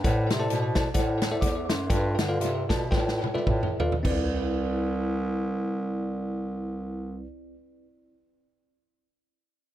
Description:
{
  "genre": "uptempo gospel",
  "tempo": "100-134 BPM",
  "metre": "4/4",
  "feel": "swing 58% on 8ths",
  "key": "C major",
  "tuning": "A4 = 442 Hz",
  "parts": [
    { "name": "bell-like tine electric piano", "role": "accompaniment", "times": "0.0-7.3 s", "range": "C2 to D6", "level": "-29 LUFS", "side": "equal", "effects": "tape echo" },
    { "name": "warm bass clarinet", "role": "bass", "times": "0.0-7.3 s", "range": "C2 to D3", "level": "-30 LUFS", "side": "right 1 dB", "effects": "none" },
    { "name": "natural country drum kit", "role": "drums", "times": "0.0-4.2 s", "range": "crash cymbal, hi-hat, kick drum, snare drum, toms", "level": "-27 LUFS", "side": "equal", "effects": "tape echo" }
  ],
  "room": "little or no reverb",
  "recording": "echo-heavy mix",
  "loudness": "-24 LUFS",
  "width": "side -13 dB against mid",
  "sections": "0.0-4.1 A section; 4.1-8.8 B section",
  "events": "slowing down 0.0-4.1; drum fill 2.9-4.1",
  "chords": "0.0 D9/A; 1.9 G9; 4.1 Cmaj9"
}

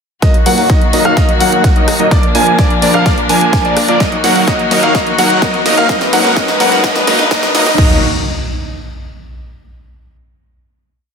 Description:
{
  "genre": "EDM, festival progressive house",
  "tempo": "127 BPM",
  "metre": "4/4",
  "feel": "straight",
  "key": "Eb harmonic minor",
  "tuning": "A4 = 440 Hz",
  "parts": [
    { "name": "rich chamber string section", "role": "sustained chords", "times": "0.2-8.0 s", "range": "Eb3 to Cb5", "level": "-19 LUFS", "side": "left 4 dB", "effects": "sidechain pumping" },
    { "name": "clear concert grand piano", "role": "arpeggios", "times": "0.2-8.0 s", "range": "D5 to Ab5", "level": "-16 LUFS", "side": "equal", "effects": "sidechain pumping, low-pass filter, ping-pong delay" },
    { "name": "supersaw chords", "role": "riff", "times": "0.2-8.0 s", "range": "F3 to Ab5", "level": "-14 LUFS", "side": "equal", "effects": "sidechain pumping, low-pass filter, ping-pong delay" },
    { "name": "big-room dance drum kit", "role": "drums", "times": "0.2-7.9 s", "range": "crash cymbal, hi-hat, rim click, snare drum", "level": "-19 LUFS", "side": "equal", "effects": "high-pass filter on snare, high-pass filter on hats, high-pass filter on cymbals" },
    { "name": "electronic kick drum", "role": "drums", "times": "0.2-7.9 s", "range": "none", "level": "-13 LUFS", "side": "equal", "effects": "none" },
    { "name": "riser and impact", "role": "sound effects", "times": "4.7-9.7 s", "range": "none", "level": "-22 LUFS", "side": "right 1 dB", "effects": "none" },
    { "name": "fat analog bass", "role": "bass", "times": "0.5-8.0 s", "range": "Eb1 to Bb2", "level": "-25 LUFS", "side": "equal", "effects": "none" }
  ],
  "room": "moderate digital room reverb, RT60 1.1 s, digital ambience",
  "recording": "dense, heavily limited modern master, high-pass filter",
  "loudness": "-9 LUFS",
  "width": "side -6 dB against mid",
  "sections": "0.2-7.8 build; 7.8-9.7 final chord",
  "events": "build-up 0.2-7.8; drum fill 0.2-7.8; filter sweep on supersaw synth 0.2-7.8; filter sweep 0.2-7.8",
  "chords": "0.2 Ebm; 2.1 Bb; 4.0 Ebm; 5.9 Abm; 7.8 Ebm"
}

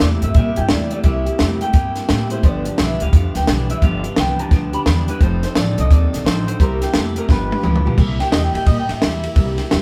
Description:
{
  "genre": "rockabilly",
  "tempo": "173 BPM",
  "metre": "4/4",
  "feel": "swing 63% on 8ths",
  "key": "C mixolydian",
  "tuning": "A4 = 438 Hz",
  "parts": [
    { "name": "electric guitar through a small old amp", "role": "melody", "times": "0.0-9.6 s", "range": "G4 to B5", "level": "-27 LUFS", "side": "equal", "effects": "spring reverb" },
    { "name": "picked steel-string acoustic guitar", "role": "accompaniment", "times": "0.0-9.8 s", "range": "G2 to A4", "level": "-27 LUFS", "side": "equal", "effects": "none" },
    { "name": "electric guitar through a small old amp", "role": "riff", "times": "0.0-8.0 s", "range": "F2 to A3", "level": "-29 LUFS", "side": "equal", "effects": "harmonic tremolo" },
    { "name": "upright bass", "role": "bass", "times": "0.0-9.8 s", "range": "F1 to Bb2", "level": "-23 LUFS", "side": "equal", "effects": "none" },
    { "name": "compact cocktail drum kit", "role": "drums", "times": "0.0-9.8 s", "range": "crash cymbal, hi-hat, kick drum, ride cymbal, snare drum, toms", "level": "-19 LUFS", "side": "equal", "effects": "none" }
  ],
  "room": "moderate studio reverb, RT60 0.5 s",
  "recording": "band playing live in one room",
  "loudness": "-17 LUFS",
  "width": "mono",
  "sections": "0.0-8.0 A section; 8.0-9.8 B section",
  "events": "drum fill 7.3-8.0; clean electric guitar solo 8.0-9.8",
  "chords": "0.0 C7; 2.4 G7; 5.2 F7; 6.6 C7; 7.3 G7; 8.0 C7"
}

